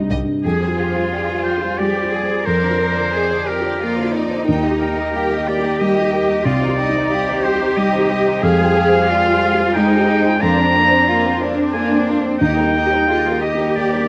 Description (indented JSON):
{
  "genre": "cinematic, emotional film score for orchestra",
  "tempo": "90 BPM",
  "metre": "3/4",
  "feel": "rubato",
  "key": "Bb mixolydian",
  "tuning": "A4 = 440 Hz",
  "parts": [
    { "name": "felt-muted upright piano", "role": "accompaniment", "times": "0.0-14.1 s", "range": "C2 to G5", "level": "-22 LUFS", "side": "equal", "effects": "none" },
    { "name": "rich symphonic cello section", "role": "bass", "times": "0.0-14.1 s", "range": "D4 to Bb4", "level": "-23 LUFS", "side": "equal", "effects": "none" },
    { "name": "clear studio viola section", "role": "accompaniment", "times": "0.1-14.1 s", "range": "D3 to Ab4", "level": "-28 LUFS", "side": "equal", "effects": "none" },
    { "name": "warm symphonic violin section", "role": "second line", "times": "0.4-14.1 s", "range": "C4 to G5", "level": "-28 LUFS", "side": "equal", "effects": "none" },
    { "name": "bright oboe", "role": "second line", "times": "0.8-14.1 s", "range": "Ab4 to Bb5", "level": "-22 LUFS", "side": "equal", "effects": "none" }
  ],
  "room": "moderate scoring stage reverb, RT60 1.8 s",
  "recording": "none",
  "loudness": "-17 LUFS",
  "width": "mono",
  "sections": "0.4-14.1 A section",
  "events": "none",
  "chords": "0.4 Fmadd9; 2.5 Bbadd9/F; 4.5 Eb; 6.5 Cm; 8.4 Fmadd9; 10.4 Bbadd9/F; 12.4 Eb",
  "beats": "| 0.44 1.12 1.79 | 2.45 3.13 3.81 | 4.47 5.14 5.79 | 6.45 7.11 7.76 | 8.42 9.09 9.74 | 10.41 11.07 11.73 | 12.40 13.07 13.75"
}